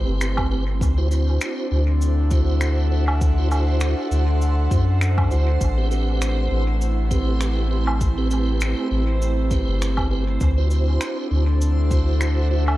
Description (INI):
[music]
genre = ambient dub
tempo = 100 BPM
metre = 4/4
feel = swing 56% on 16ths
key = unclear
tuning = A4 = 439 Hz
[part]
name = airy breathy pad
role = sustained chords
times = 0.0-12.8 s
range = A3 to F#5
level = -28 LUFS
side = equal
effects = chorus, vintage 12-bit sampler grit
[part]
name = tonewheel organ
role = stabs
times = 0.0-12.6 s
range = C4 to C5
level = -29 LUFS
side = right 4 dB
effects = overdrive, chorus vibrato, fast rotary speaker, dub echo
[part]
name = soft dub sub bass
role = bass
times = 0.0-12.8 s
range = G1 to F#2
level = -19 LUFS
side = equal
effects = none
[part]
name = backwards swelling texture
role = texture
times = 0.0-12.8 s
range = C5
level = -34 LUFS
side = right 3 dB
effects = built-in reverb
[part]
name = cabasa, finger snaps and woodblock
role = drums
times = 0.2-12.8 s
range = none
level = -30 LUFS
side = equal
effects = dub echo
[part]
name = electronic kick drum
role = drums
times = 0.4-12.0 s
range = none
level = -23 LUFS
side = equal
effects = none
[sound]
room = small room ambience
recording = none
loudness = -18 LUFS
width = side -16 dB against mid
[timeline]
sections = 0.0-12.8 A section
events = none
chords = 0.0 Am9; 0.8 D9; 5.6 Am9; 10.4 D9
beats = 0.21 | 0.81 1.41 2.01 2.61 | 3.21 3.81 4.41 5.01 | 5.61 6.21 6.81 7.41 | 8.01 8.61 9.21 9.81 | 10.41 11.01 11.61 12.21